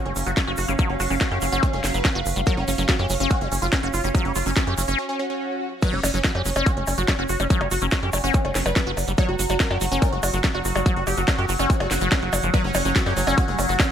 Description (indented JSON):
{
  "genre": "psychedelic trance",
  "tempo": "143 BPM",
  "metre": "4/4",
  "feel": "straight",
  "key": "unclear",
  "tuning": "A4 = 435 Hz",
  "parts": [
    { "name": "overtone-sweeping drone", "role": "sustained chords", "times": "0.0-13.9 s", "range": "F#3", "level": "-33 LUFS", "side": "equal", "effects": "chorus, built-in reverb, phaser, sidechain pumping" },
    { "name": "liquid acid bass", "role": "riff", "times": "0.0-13.8 s", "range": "E#3 to G4", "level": "-28 LUFS", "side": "left 2 dB", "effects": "phaser, auto-pan, sidechain pumping, ping-pong delay" },
    { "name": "warbly tape-like pad", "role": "texture", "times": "0.0-13.9 s", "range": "C#4 to F#5", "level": "-34 LUFS", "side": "equal", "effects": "chorus, built-in reverb, phaser, sidechain pumping" },
    { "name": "supersaw stab", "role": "melody", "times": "0.1-13.9 s", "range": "C#4 to C#5", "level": "-28 LUFS", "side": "right 2 dB", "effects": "phaser, sidechain pumping, digital delay" },
    { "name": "tight sequencer bass", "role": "bass", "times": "0.1-13.8 s", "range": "F#1 to F#2", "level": "-26 LUFS", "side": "equal", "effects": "none" },
    { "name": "techno drum kit", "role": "drums", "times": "0.1-13.9 s", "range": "crash cymbal, hi-hat, percussion blips, snare drum", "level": "-26 LUFS", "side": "left 1 dB", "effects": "none" },
    { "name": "tube shaker", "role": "percussion", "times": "0.2-13.9 s", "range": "none", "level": "-33 LUFS", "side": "right 4 dB", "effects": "none" },
    { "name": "electronic kick drum", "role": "drums", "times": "0.4-13.9 s", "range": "none", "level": "-22 LUFS", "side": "equal", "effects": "distortion" },
    { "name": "swell", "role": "sound effects", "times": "5.1-5.8 s", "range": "none", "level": "-33 LUFS", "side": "left 1 dB", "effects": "none" }
  ],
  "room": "little or no reverb",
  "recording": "none",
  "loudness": "-19 LUFS",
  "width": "side -9 dB against mid",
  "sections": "0.0-5.8 A section; 5.8-13.9 B section",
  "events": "break 5.0-5.8; swell 5.1-5.8; drop 5.8-13.9",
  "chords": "0.0 F#5"
}